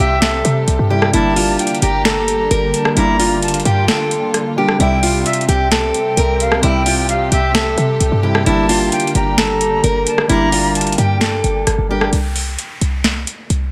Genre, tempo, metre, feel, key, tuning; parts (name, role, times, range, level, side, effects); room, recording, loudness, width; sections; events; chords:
hip hop, trap; 131 BPM; 4/4; half-time; G dorian; A4 = 441 Hz
picked old ladder-braced acoustic guitar; melody; 0.0-12.1 s; E4 to Bb4; -21 LUFS; equal
jazz flute; second line; 0.0-11.6 s; E5 to Bb5; -24 LUFS; equal; tape echo
warm baby grand piano; accompaniment; 0.0-12.1 s; C3 to E5; -25 LUFS; equal; low-pass filter
dark studio string section; sustained chords; 0.0-12.1 s; C3 to G4; -26 LUFS; equal
short 808-style bass; bass; 0.0-13.7 s; G1 to C3; -21 LUFS; equal
booming analog drum machine; drums; 0.2-13.6 s; hi-hat, rim click, snare drum; -21 LUFS; equal; overdrive
downlifter; sound effects; 12.1-13.7 s; -34 LUFS; equal
light reverb, small room ambience; -15 LUFS; mono
0.0-12.1 A section; 12.1-13.7 B section
kick muted 3.9-4.8; break 12.1-13.7; filter sweep on grand piano 12.1-13.7
0.0 C; 1.1 Gm; 4.8 C; 8.5 Gm; 12.1 C5